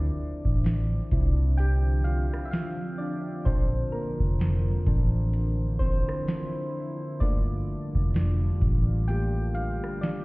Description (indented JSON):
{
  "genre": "contemporary R&B",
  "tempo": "64 BPM",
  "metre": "4/4",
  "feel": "swing 58% on 16ths",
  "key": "D minor",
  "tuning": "A4 = 442 Hz",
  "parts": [
    { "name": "soft electric-piano-like synth keys", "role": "accompaniment", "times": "0.0-10.2 s", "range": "F3 to G5", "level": "-34 LUFS", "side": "left 1 dB", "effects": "chorus" },
    { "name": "deep dark ambient pad", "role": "sustained chords", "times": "0.0-10.2 s", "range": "D3 to F4", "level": "-35 LUFS", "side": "right 1 dB", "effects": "chorus, built-in reverb" },
    { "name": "vintage muted fingered electric bass", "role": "bass", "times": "0.0-9.8 s", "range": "F1 to C2", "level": "-25 LUFS", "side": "equal", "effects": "none" },
    { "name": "booming analog drum machine", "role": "drums", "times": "0.5-10.2 s", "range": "hi-hat, kick drum, rim click, snare drum", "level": "-26 LUFS", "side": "equal", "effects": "none" }
  ],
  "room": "digital ambience",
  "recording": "heard muffled through a wall, stone room reverb, EQ",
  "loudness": "-24 LUFS",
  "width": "side -24 dB against mid",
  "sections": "0.0-10.2 A section",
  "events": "synth keys solo 0.0-10.2",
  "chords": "0.0 Dm7; 3.5 Bbmaj7; 7.2 Gm7",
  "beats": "0.65 1.58 2.52 | 3.46 4.40 5.33 6.27 | 7.21 8.15 9.08 10.02"
}